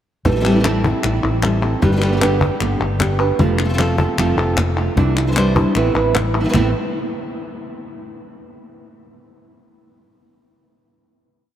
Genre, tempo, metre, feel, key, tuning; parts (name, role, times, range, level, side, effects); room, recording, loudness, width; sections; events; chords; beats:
flamenco; 153 BPM; 4/4; straight; A minor; A4 = 437 Hz
nylon-string guitar; accompaniment; 0.2-6.7 s; A2 to C5; -20 LUFS; right 1 dB
mellow fretless electric bass; bass; 0.2-6.7 s; F1 to C2; -20 LUFS; equal; analog chorus
flamenco guitar; stabs; 0.3-6.7 s; A2 to G4; -23 LUFS; right 3 dB
cajon; percussion; 0.3-6.6 s; -24 LUFS; left 1 dB
palmas hand claps; percussion; 0.5-6.6 s; -25 LUFS; left 4 dB
wet cathedral reverb, RT60 5.1 s; in a vast, echoing space; -15 LUFS; side -10 dB against mid
0.2-6.5 groove; 6.5-8.1 final chord
0.2 Am7; 1.8 Gadd9; 3.4 F; 5.0 Cadd9; 5.8 Amadd9
| 0.25 0.64 1.03 1.43 | 1.82 2.21 2.61 3.00 | 3.39 3.79 4.18 4.57 | 4.97 5.36 5.75 6.15 | 6.54